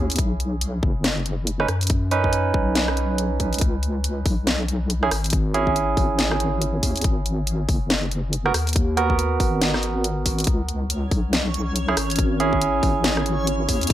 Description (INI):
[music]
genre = deep dubstep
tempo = 140 BPM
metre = 4/4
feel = swing 59% on 16ths, half-time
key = C# dorian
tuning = A4 = 440 Hz
[part]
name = barky tine electric piano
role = stabs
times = 0.0-13.9 s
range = B3 to B4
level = -25 LUFS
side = right 4 dB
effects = dub echo
[part]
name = deep soft wobble bass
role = bass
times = 0.0-13.9 s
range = F#1 to F#2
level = -24 LUFS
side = left 1 dB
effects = chorus
[part]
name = garage drum kit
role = drums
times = 0.1-13.9 s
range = hi-hat, rim click, snare drum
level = -24 LUFS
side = left 1 dB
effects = none
[part]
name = electronic kick drum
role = drums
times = 0.2-13.9 s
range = none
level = -22 LUFS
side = left 1 dB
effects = none
[part]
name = backwards swelling texture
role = texture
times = 10.9-13.9 s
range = C#4 to C#5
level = -29 LUFS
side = left 2 dB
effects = built-in reverb
[sound]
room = light reverb, digital ambience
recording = none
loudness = -19 LUFS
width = side -12 dB against mid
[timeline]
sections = 0.0-13.9 A section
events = none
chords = 0.2 Badd9; 3.6 C#m; 7.0 G#m7; 10.5 C#m